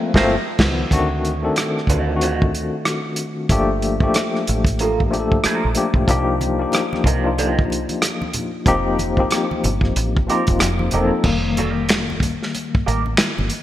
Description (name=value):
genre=R&B, neo-soul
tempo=93 BPM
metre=4/4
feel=swing 61% on 16ths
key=unclear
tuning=A4 = 438 Hz
part: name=mellow tine electric piano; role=accompaniment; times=0.0-13.6 s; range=D#3 to A4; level=-21 LUFS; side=left 3 dB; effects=medium tremolo
part: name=deep dub fingered electric bass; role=bass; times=0.1-13.5 s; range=E1 to D2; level=-23 LUFS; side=equal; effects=none
part: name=warm soul drum kit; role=drums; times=0.1-13.6 s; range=crash cymbal, finger snaps, hi-hat, kick drum, rim click, snare drum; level=-20 LUFS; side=equal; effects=gated reverb
part: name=electric guitar through a small old amp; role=second line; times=0.2-13.0 s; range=Bb3 to Eb5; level=-26 LUFS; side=right 5 dB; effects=wah
part: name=congas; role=percussion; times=6.1-13.5 s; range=none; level=-32 LUFS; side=right 1 dB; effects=none
room=light reverb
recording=bright 1980s-style digital production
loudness=-17 LUFS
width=side -13 dB against mid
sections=0.9-11.2 A section; 11.2-13.6 B section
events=band accent 0.0-0.9; tine electric piano solo 11.2-13.6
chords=0.3 C#9; 0.9 D7b9; 3.5 Gm9; 6.1 Cm11; 8.7 F9sus4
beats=0.27 | 0.92 1.56 2.21 2.85 | 3.50 4.14 4.79 5.43 | 6.08 6.72 7.37 8.01 | 8.66 9.30 9.95 10.59 | 11.24 11.88 12.53 13.17